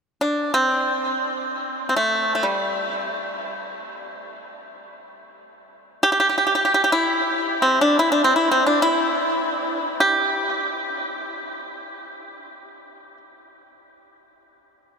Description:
chinese traditional, Chinese solo plucked strings; free time; A4 = 439 Hz
pipa; solo; 0.2-13.2 s; G3 to G4; -19 LUFS; equal; diffuse ambient delay
wet huge ambient reverb, RT60 8.6 s; dreamy mix soaked in reverb; -18 LUFS; side -5 dB against mid
0.0-15.0 A section

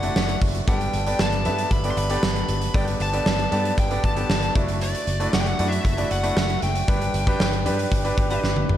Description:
1980s-style pop; 116 BPM; 4/4; straight; A4 = 440 Hz
smooth overdriven lead guitar; melody; 0.0-8.4 s; D5 to C6; -29 LUFS; left 1 dB; digital delay
clear concert grand piano; accompaniment; 0.0-8.8 s; G2 to E5; -26 LUFS; equal
vintage muted fingered electric bass; bass; 0.0-8.8 s; F#1 to G2; -26 LUFS; equal
big rock drum kit; drums; 0.0-8.8 s; hi-hat, kick drum, snare drum, tambourine, toms; -24 LUFS; equal
light reverb, small room ambience; dark, warm production; -20 LUFS; side -11 dB against mid
0.0-8.8 A section
drum fill 8.4-8.8
0.0 Dadd9/F#; 0.7 Gadd9; 4.6 Dadd9/F#; 6.9 G

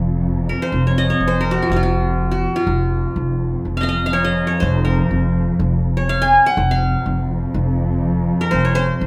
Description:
Arabic maqam ensemble; 123 BPM; 4/4; straight; F maqam bayati; A4 = 435 Hz
upright bass; bass; 0.0-9.1 s; F1; -22 LUFS; equal
dark studio cello section; drone; 0.0-9.1 s; F2; -24 LUFS; equal
qanun; melody; 0.5-9.1 s; F4 to Ab5; -21 LUFS; equal
wet studio reverb, RT60 0.5 s; rough home demo mix; -18 LUFS; mono
0.0-9.1 A section

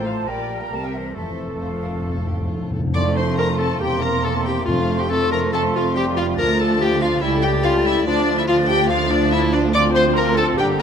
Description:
quick classical-period movement for symphony orchestra; 141 BPM; 4/4; rubato; F major; A4 = 439 Hz
muted chamber violin section; melody; 0.0-10.8 s; F4 to D6; -26 LUFS; left 4 dB
clear clarinet; second line; 0.0-10.8 s; D4 to D5; -24 LUFS; left 2 dB
muted chamber violin section; second line; 0.0-10.8 s; A3 to G5; -31 LUFS; equal
muted chamber viola section; accompaniment; 0.0-10.8 s; D4 to D5; -26 LUFS; right 1 dB
warm bassoon; accompaniment; 0.0-10.8 s; D3 to Bb3; -28 LUFS; right 2 dB
dark French horn section; sustained chords; 0.0-10.8 s; E3 to G4; -26 LUFS; left 5 dB
muted chamber cello section; bass; 0.0-10.8 s; C#2 to C3; -28 LUFS; right 3 dB
muted chamber double bass section; bass; 0.0-10.8 s; E1 to D2; -26 LUFS; right 4 dB
flute section; second line; 0.1-10.8 s; E5 to A6; -28 LUFS; right 1 dB
timpani; percussion; 1.2-5.3 s; F2; -26 LUFS; left 1 dB
light reverb; close, detailed microphones; -17 LUFS; side -7 dB against mid
0.0-3.0 A section; 3.0-10.8 B section
timpani fill 1.2-3.0
0.3 Gm/Bb; 0.7 C7; 1.2 F; 3.8 C7/E; 4.7 F; 6.4 Dm; 7.2 A7/C#; 8.1 Dm; 9.7 Dm7

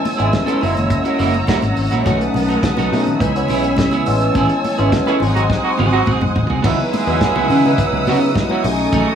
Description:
disco; 105 BPM; 4/4; straight; C# minor; A4 = 440 Hz
barky tine electric piano; accompaniment; 0.0-9.2 s; E3 to F#5; -20 LUFS; left 2 dB; overdrive, analog chorus
clean electric guitar; accompaniment; 0.0-9.1 s; A3 to A4; -22 LUFS; right 6 dB
warm studio string section; sustained chords; 0.0-9.2 s; A3 to E6; -22 LUFS; right 2 dB
warm soul drum kit; drums; 0.1-9.1 s; crash cymbal, hi-hat, kick drum, snare drum, toms; -22 LUFS; equal
congas; percussion; 0.1-9.1 s; -27 LUFS; left 3 dB
fingered electric bass; bass; 0.2-9.0 s; F#1 to C#3; -19 LUFS; equal
clear horn section; stabs; 5.1-9.2 s; G#3 to A4; -22 LUFS; right 6 dB
light reverb; small room ambience; -14 LUFS; side -8 dB against mid
0.0-6.6 A section; 6.6-9.2 B section
tine electric piano fill 1.2-2.1; band accent 4.3-6.6; drum fill 5.5-6.6
0.0 Amaj7; 0.6 F#7; 2.1 B7; 3.2 C#m7; 4.1 Amaj7; 5.2 G#7; 6.6 C#m11; 8.6 B13

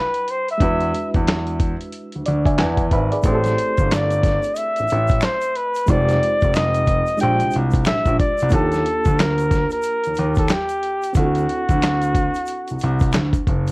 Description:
R&B, neo-soul; 91 BPM; 4/4; swing 61% on 16ths; A4 = 439 Hz
warm flugelhorn; melody; 0.0-13.1 s; F#4 to G5; -21 LUFS; equal
reed electric piano; accompaniment; 0.0-13.7 s; G3 to B5; -26 LUFS; right 2 dB; fast tremolo
dusty soul sampler-style drum kit; drums; 0.1-13.7 s; handclaps, hi-hat, kick drum, snare drum; -20 LUFS; equal
warm grand piano; bass; 0.6-13.7 s; F1 to E2; -21 LUFS; equal
egg shaker and finger snaps; percussion; 3.2-13.7 s; -35 LUFS; left 3 dB
little or no reverb; worn, warbling old tape, cassette tape, warbly pitch drift; -16 LUFS; side -25 dB against mid
0.0-13.7 A section
reed electric piano fill 1.9-3.2
0.0 Cmaj9#11; 0.6 E7; 3.2 Am7; 5.9 Fm7; 7.2 Bb13; 8.5 Ebmaj9#11; 11.2 D9

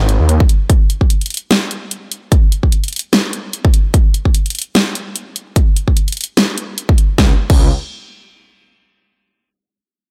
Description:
future bass; 148 BPM; 4/4; swing 56% on 16ths, half-time; A4 = 441 Hz
detuned saw bass; bass; 0.0-0.4, 7.2-7.7 s; Ab1 to Eb2; -16 LUFS; equal; chorus, sidechain pumping
dubstep drum kit; drums; 0.1-7.6 s; crash cymbal, hi-hat, snare drum; -19 LUFS; equal
electronic kick drum; drums; 0.4-7.6 s; -14 LUFS; equal
little or no reverb; -14 LUFS; mono
0.0-7.2 A section; 7.2-8.8 B section

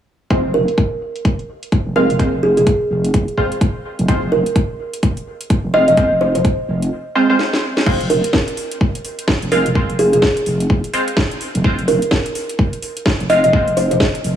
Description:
bass house; 127 BPM; 4/4; swing 60% on 16ths; F minor; A4 = 440 Hz
band-passed chord stab; stabs; 0.3-13.7 s; Ab3 to F5; -21 LUFS; right 1 dB; wide subtle chorus, sidechain pumping, dub echo
vowel-sweep wobble bass; bass; 0.3-14.4 s; F1; -19 LUFS; equal; chorus, overdrive, sidechain pumping
electronic kick drum; drums; 0.3-14.1 s; -17 LUFS; equal
house drum kit; drums; 0.3-14.4 s; crash cymbal, hi-hat, snare drum; -22 LUFS; equal; low-pass filter on hats, low-pass filter on snare, low-pass filter on cymbals, low-pass filter on room
kalimba; melody; 0.5-14.0 s; Ab4 to Eb5; -18 LUFS; right 1 dB; dub echo
light reverb, digital ambience; small room ambience; -14 LUFS; side -10 dB against mid
0.3-7.9 A section; 7.9-14.4 B section
filter sweep on drum 0.3-7.9; filter sweep on synth stab 0.3-7.9; drum fill 7.4-7.9
0.3 Fm

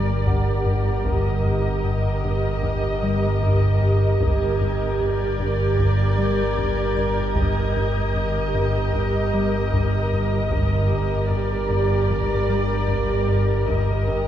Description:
cinematic, suspense film score; 76 BPM; 4/4; straight; G minor; A4 = 445 Hz
muted studio violin section; melody; 0.0-14.3 s; D5 to Eb5; -30 LUFS; left 1 dB
muted studio violin section; second line; 0.0-14.3 s; Bb4; -28 LUFS; left 1 dB
muted studio viola section; accompaniment; 0.0-14.3 s; G4; -28 LUFS; right 3 dB
rubbery square bass; riff; 0.0-14.3 s; G2 to G3; -26 LUFS; left 2 dB
muted studio cello section; bass; 0.0-14.3 s; G2; -28 LUFS; equal
muted studio double bass section; bass; 0.0-14.3 s; G1; -27 LUFS; right 1 dB
saturated sub bass; drone; 0.0-14.3 s; G1; -29 LUFS; equal
vibraphone with medium mallets; texture; 0.0-14.3 s; G4 to Bb5; -34 LUFS; right 5 dB
taiko ensemble; drums; 0.3-14.3 s; -30 LUFS; equal
muted symphonic violin section; texture; 4.2-10.1 s; G6 to Ab6; -37 LUFS; left 4 dB
wet scoring stage reverb, RT60 1.7 s; heard from further back in the room; -19 LUFS; side -10 dB against mid
0.0-14.3 A section
0.0 Gm

